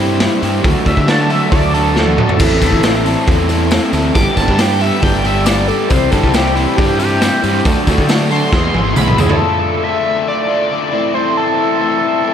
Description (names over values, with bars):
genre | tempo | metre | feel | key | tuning
indie rock | 137 BPM | 4/4 | straight | unclear | A4 = 440 Hz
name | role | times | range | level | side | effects
tonewheel organ | sustained chords | 0.0-12.3 s | F4 to E6 | -26 LUFS | equal | none
overdriven semi-hollow guitar | riff | 0.0-12.3 s | E2 to A4 | -19 LUFS | left 7 dB | none
overdriven semi-hollow guitar | riff | 0.0-9.4 s | E3 to A4 | -20 LUFS | right 8 dB | lush chorus, tape echo
fuzz picked electric bass | bass | 0.0-9.4 s | G1 to D3 | -18 LUFS | equal | overdrive
raw garage drum kit | drums | 0.2-9.4 s | crash cymbal, hi-hat, kick drum, snare drum, toms | -16 LUFS | equal | none
overdriven synth lead | melody | 0.9-12.3 s | E4 to D6 | -18 LUFS | right 1 dB | phaser, tape echo
tambourine | percussion | 2.4-9.3 s | none | -33 LUFS | left 8 dB | none
room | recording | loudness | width
moderate huge ambient reverb, RT60 4.5 s | dreamy mix soaked in reverb | -11 LUFS | side -8 dB against mid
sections
0.0-9.4 A section; 9.4-12.3 B section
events
analog synth lead solo 0.0-9.4; drum fill 2.0-2.4, 8.5-9.4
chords
0.0 Cmaj7; 0.6 Dadd9; 2.4 Amadd9; 4.1 Gadd9; 5.9 Cmaj7; 7.7 Dadd9; 8.5 E; 9.4 Dmadd9; 10.9 Am